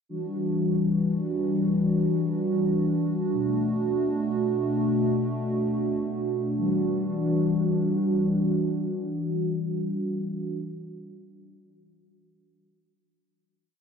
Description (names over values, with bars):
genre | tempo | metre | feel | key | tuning
hip hop, atmospheric cloud-rap | free time | none | none | E minor | A4 = 438 Hz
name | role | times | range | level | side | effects
hollow soft pad | solo | 0.1-10.6 s | B2 to F#4 | -24 LUFS | equal | chorus
room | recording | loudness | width
moderate huge ambient reverb, RT60 3.9 s | low-pass filter | -24 LUFS | side -6 dB against mid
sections
0.1-6.6 breakdown; 6.6-9.8 final chord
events
filter sweep 0.1-6.6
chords
0.1 Em9; 3.3 D6; 6.6 Em9